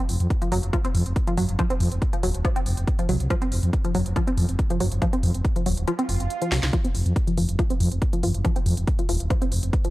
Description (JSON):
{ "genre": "driving peak-time techno", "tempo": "140 BPM", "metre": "4/4", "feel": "straight", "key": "unclear", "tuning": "A4 = 440 Hz", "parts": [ { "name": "growling FM bass", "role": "bass", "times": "0.1-9.7 s", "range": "Eb1 to F2", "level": "-23 LUFS", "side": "equal", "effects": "sidechain pumping" }, { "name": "techno drum kit", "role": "drums", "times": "0.1-9.9 s", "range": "hi-hat, snare drum", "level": "-33 LUFS", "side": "equal", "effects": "small room ambience" }, { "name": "electronic kick drum", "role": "drums", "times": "0.3-9.8 s", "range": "none", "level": "-24 LUFS", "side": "equal", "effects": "small room ambience" }, { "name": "tight sequenced synth", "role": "riff", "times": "0.4-9.9 s", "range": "F3 to C4", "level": "-28 LUFS", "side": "equal", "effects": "chorus, sidechain pumping, tape echo" }, { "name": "swell", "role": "sound effects", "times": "6.0-6.7 s", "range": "none", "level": "-34 LUFS", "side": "right 8 dB", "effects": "none" } ], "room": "little or no reverb", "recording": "dry, gritty hardware recording", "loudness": "-21 LUFS", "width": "side -18 dB against mid", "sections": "0.0-9.9 A section", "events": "kick drops out 5.9-6.7; swell 6.0-6.7; drum fill 6.5", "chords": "none" }